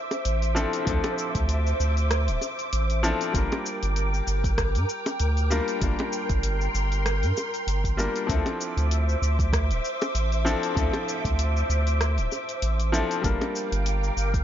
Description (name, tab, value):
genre	sunset chillout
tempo	97 BPM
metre	4/4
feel	swing 56% on 16ths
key	D minor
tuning	A4 = 440 Hz
part	bright baby grand piano	accompaniment	0.0-14.4 s	F3 to Bb4	-30 LUFS	moving between left 4 dB and right 4 dB	auto-pan, tape echo
part	soft string machine	sustained chords	0.0-14.4 s	Bb4 to D6	-30 LUFS	equal	phaser, ensemble chorus
part	deep house drum kit	drums	0.1-14.4 s	cabasa, hi-hat, rim click	-33 LUFS	left 1 dB	overdrive
part	bongos	percussion	0.1-13.5 s	none	-31 LUFS	equal	none
part	round analog bass	bass	0.3-14.4 s	D1 to G2	-24 LUFS	equal	none
part	electronic kick drum	drums	0.9-14.4 s	none	-28 LUFS	equal	overdrive
room	little or no reverb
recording	nothing above 7.5 kHz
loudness	-23 LUFS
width	side -10 dB against mid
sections	0.0-14.4 A section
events	none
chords	0.0 Dm9; 3.3 Gm7; 8.3 Dm9; 13.2 Gm7